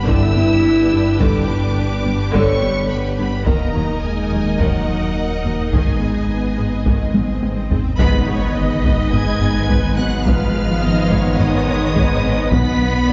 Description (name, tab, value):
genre	cinematic, hybrid orchestral and electronic film score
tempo	106 BPM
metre	4/4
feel	straight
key	G# dorian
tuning	A4 = 439 Hz
part	warm symphonic violin section	melody	0.0-13.1 s	F#5 to B6	-32 LUFS	equal	none
part	rich symphonic violin section	second line	0.0-13.1 s	G4 to B5	-32 LUFS	equal	none
part	warm symphonic viola section	accompaniment	0.0-13.1 s	D3 to D#5	-28 LUFS	equal	none
part	analog string pad	sustained chords	0.0-13.1 s	D3 to D#5	-28 LUFS	equal	ensemble chorus
part	dark French horn section	sustained chords	0.0-13.1 s	F#3 to C#5	-25 LUFS	equal	none
part	sub bass with octave	bass	0.0-13.1 s	D#1 to B1	-26 LUFS	equal	none
part	thumb-piano-like synth pluck	arpeggios	0.1-13.1 s	D#3 to B4	-29 LUFS	equal	none
part	rich symphonic cello section	bass	0.1-13.1 s	D#2 to B3	-27 LUFS	equal	none
part	rich symphonic double bass section	bass	0.1-13.1 s	G1 to D#2	-27 LUFS	equal	none
part	taiko ensemble	drums	0.1-13.1 s	none	-23 LUFS	equal	none
part	swell and impact	sound effects	6.8-10.3 s	none	-31 LUFS	equal	none
part	clear trombone section	sustained chords	8.0-13.1 s	G#2 to G#3	-30 LUFS	equal	none
room	wet concert hall reverb, RT60 2.1 s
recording	heard from further back in the room, nothing above 7.6 kHz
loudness	-17 LUFS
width	mono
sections	0.0-8.0 A section; 8.0-13.1 B section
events	swell 6.8-8.0; drum fill 7.2-8.0; band accent 8.0-8.6; impact 8.0-10.3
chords	0.0 G; 3.5 D#m; 5.7 G#m; 12.5 Bm